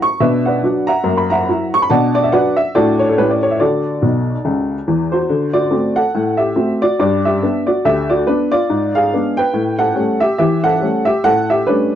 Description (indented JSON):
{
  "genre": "jazz, stride piano",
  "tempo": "141 BPM",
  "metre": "4/4",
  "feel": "swing 59% on 8ths",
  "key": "D major",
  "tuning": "A4 = 440 Hz",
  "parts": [
    { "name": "clear upright piano", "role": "solo", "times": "0.0-11.9 s", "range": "B1 to C#6", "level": "-13 LUFS", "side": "equal", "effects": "none" }
  ],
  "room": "light reverb",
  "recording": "dry, close 1970s-style studio recording",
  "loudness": "-13 LUFS",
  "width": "side -10 dB against mid",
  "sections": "0.0-5.3 A section; 5.3-12.0 B section",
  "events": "upright piano fill 4.0-5.3",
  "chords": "0.2 Bm; 1.1 F#7; 1.9 Bm; 2.8 D/A; 3.2 A7; 3.6 D; 5.3 D7; 7.0 G; 8.7 G#dim7; 9.5 A13; 10.4 A7/E",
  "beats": "| 0.20 0.62 1.05 1.48 | 1.90 2.33 2.75 3.18 | 3.60 4.03 4.46 4.88 | 5.30 5.73 6.15 6.58 | 7.00 7.43 7.85 8.28 | 8.70 9.12 9.55 9.97 | 10.40 10.82 11.25 11.67"
}